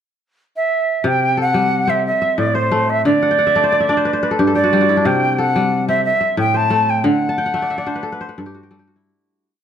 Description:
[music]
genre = west african traditional, West African string and xylophone music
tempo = 120 BPM (dotted quarters)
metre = 12/8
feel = straight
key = C lydian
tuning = A4 = 438 Hz
[part]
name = jazz flute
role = melody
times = 0.6-8.4 s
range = C5 to A5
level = -17 LUFS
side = right 1 dB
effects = slapback echo
[part]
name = kora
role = arpeggios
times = 1.0-9.6 s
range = G2 to A5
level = -18 LUFS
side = left 1 dB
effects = none
[sound]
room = moderate recital hall reverb, RT60 1.7 s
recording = close, detailed microphones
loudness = -14 LUFS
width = side -8 dB against mid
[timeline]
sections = 0.0-1.0 pickup bar; 1.0-9.0 A section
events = kora fill 3.2-5.0, 7.3-9.0; fade-out 7.0-9.0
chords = 0.0 N.C.; 1.0 C5; 2.0 Am; 3.0 D5; 4.0 N.C.; 5.0 C5; 6.0 Am; 7.0 D; 8.0 N.C.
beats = 0.04 0.54 | 1.04 1.54 2.04 2.54 | 3.04 3.55 4.05 4.55 | 5.05 5.55 6.04 6.54 | 7.04 7.54 8.04 8.53

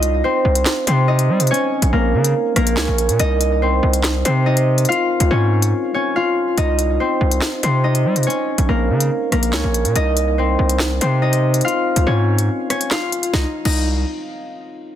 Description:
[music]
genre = hip hop, drill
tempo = 142 BPM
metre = 4/4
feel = half-time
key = C phrygian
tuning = A4 = 440 Hz
[part]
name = concert harp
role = melody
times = 0.0-13.8 s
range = Bb3 to F5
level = -18 LUFS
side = left 1 dB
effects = tape echo
[part]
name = distorted 808-style bass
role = bass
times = 0.0-14.0 s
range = Bb1 to G3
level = -17 LUFS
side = equal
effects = distortion
[part]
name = drill drum kit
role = drums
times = 0.0-13.8 s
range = crash cymbal, handclaps, hi-hat, rim click, snare drum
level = -21 LUFS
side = equal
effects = none
[sound]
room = little or no reverb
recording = dense, heavily limited modern master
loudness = -15 LUFS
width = side -10 dB against mid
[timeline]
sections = 0.0-6.6 A section; 6.6-13.3 B section; 13.3-15.0 C section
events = break 5.7-6.6, 12.5-13.3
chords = 0.0 Cm; 1.5 Bbm; 3.2 Cm; 4.9 Db; 6.6 Cm; 8.3 Bbm; 10.0 Cm; 11.6 Db; 13.3 N.C.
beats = 0.24 0.66 1.08 | 1.50 1.93 2.35 2.77 | 3.19 3.62 4.04 4.46 | 4.88 5.31 5.73 6.15 | 6.58 7.00 7.42 7.84 | 8.27 8.69 9.11 9.53 | 9.96 10.38 10.80 11.22 | 11.65 12.07 12.49 12.91 | 13.34 13.76

